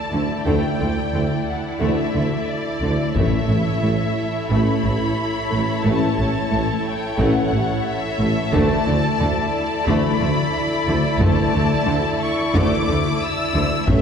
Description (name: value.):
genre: cinematic, epic orchestral film score.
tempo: 90 BPM.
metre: 4/4.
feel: straight.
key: unclear.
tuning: A4 = 440 Hz.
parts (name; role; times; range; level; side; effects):
rich symphonic violin section; melody; 0.0-14.0 s; D5 to E6; -26 LUFS; left 3 dB; none.
warm symphonic violin section; second line; 0.0-14.0 s; A4 to D5; -28 LUFS; left 2 dB; none.
rich symphonic viola section; accompaniment; 0.0-14.0 s; A3 to E4; -25 LUFS; right 1 dB; none.
rich symphonic double bass section; bass; 0.1-14.0 s; A1 to D2; -25 LUFS; right 1 dB; none.
warm symphonic cello section; bass; 0.1-14.0 s; A2 to D3; -26 LUFS; right 1 dB; none.
warm tuba; bass; 0.1-14.0 s; A1 to D2; -26 LUFS; right 1 dB; none.
dark French horn section; sustained chords; 0.5-14.0 s; E3 to D4; -28 LUFS; left 4 dB; none.
taiko ensemble; drums; 3.2-4.5, 8.5-14.0 s; none; -24 LUFS; left 1 dB; none.
timpani; percussion; 3.2-4.1, 13.9-14.0 s; A2; -26 LUFS; left 2 dB; none.
room: wet scoring stage reverb, RT60 2.0 s.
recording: heard from further back in the room.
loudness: -18 LUFS.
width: side -7 dB against mid.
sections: 0.0-14.0 A section.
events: none.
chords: 0.0 Dsus2; 3.2 A; 8.5 Dsus2.